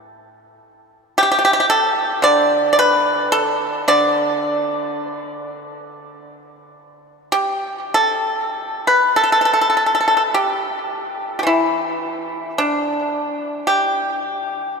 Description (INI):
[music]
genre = chinese traditional, Chinese solo plucked strings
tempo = 48-56 BPM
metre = 4/4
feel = rubato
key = D zhi mode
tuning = A4 = 440 Hz
[part]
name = pipa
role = solo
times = 0.0-14.7 s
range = A2 to D5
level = -16 LUFS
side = equal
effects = tape echo
[sound]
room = wet cathedral reverb, RT60 6.3 s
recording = in a vast, echoing space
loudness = -16 LUFS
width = side -5 dB against mid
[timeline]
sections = 0.0-9.1 A section; 9.1-14.8 B section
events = none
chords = none